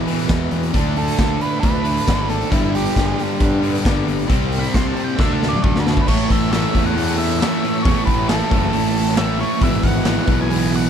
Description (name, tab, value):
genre	classic rock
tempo	135 BPM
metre	4/4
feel	straight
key	unclear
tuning	A4 = 442 Hz
part	tonewheel organ	sustained chords	0.0-10.9 s	F#3 to D5	-32 LUFS	equal	none
part	crunchy overdriven guitar	riff	0.0-10.9 s	E2 to D4	-27 LUFS	left 1 dB	none
part	distorted electric guitar	riff	0.0-10.9 s	E2 to D4	-25 LUFS	left 14 dB	overdrive
part	overdriven electric guitar	riff	0.0-10.9 s	E2 to D4	-24 LUFS	right 13 dB	none
part	fuzz picked electric bass	bass	0.0-10.9 s	F#1 to E3	-22 LUFS	left 1 dB	overdrive
part	raw garage drum kit	drums	0.1-10.8 s	crash cymbal, hi-hat, kick drum, snare drum, toms	-20 LUFS	equal	none
part	octave-fuzz lead guitar	melody	1.0-10.9 s	E4 to C6	-25 LUFS	right 2 dB	distortion
room	little or no reverb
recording	none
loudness	-16 LUFS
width	side -8 dB against mid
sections	0.0-6.1 A section; 6.1-10.9 B section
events	lead electric guitar solo 0.0-6.1; drum fill 5.2-6.1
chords	0.0 E; 0.7 Dadd9; 2.5 G; 4.3 C; 5.2 D; 6.1 A; 9.6 E/G#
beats	0.30 | 0.74 1.19 1.64 2.08 | 2.53 2.97 3.42 3.86 | 4.30 4.75 5.19 5.64 | 6.08 6.52 6.96 7.41 | 7.85 8.29 8.73 9.17 | 9.62 10.06 10.50